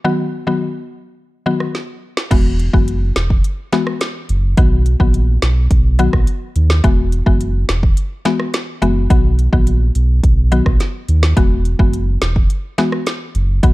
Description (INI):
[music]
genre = dancehall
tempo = 106 BPM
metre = 4/4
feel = straight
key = unclear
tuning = A4 = 439 Hz
[part]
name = mallet-like synth pluck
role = accompaniment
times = 0.0-13.7 s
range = D#3 to F#4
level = -19 LUFS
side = left 2 dB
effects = chorus, sidechain pumping
[part]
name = afro-pop drum kit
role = drums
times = 1.6-13.7 s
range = crash cymbal, hi-hat, kick drum, rim click, snare drum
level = -16 LUFS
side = equal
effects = none
[part]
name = sub bass with octave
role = bass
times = 2.3-13.7 s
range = E1 to D#2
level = -15 LUFS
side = equal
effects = none
[sound]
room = little or no reverb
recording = dark, warm production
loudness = -13 LUFS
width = side -19 dB against mid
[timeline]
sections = 0.0-2.3 A section; 2.3-13.7 B section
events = break 1.2-2.3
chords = 0.0 B; 2.3 Eadd9; 4.6 B; 6.8 Eadd9; 9.1 B; 11.4 Eadd9